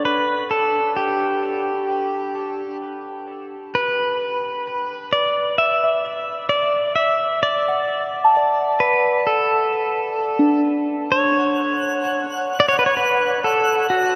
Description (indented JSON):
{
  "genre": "ambient",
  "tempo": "65 BPM",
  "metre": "4/4",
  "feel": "straight",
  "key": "unclear",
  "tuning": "A4 = 439 Hz",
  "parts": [
    { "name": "pedal steel guitar", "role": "melody", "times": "0.0-14.2 s", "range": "F#4 to E5", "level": "-21 LUFS", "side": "equal", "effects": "tape echo" },
    { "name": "soft synth bell", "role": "arpeggios", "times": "0.0-11.3 s", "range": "D4 to C#6", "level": "-25 LUFS", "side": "equal", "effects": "chorus, phaser, tape echo" },
    { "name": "twinkling granular texture", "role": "texture", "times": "11.4-14.2 s", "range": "F#5 to F#6", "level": "-28 LUFS", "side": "equal", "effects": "built-in reverb" }
  ],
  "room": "wet cathedral reverb, RT60 6.7 s",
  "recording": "in a vast, echoing space",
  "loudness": "-20 LUFS",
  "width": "mono",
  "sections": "0.0-11.1 A section; 11.1-14.2 B section",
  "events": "fade-in on synth bell 0.0-11.1",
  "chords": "0.0 Gmaj7sus2/D; 3.7 D69; 11.1 F#5"
}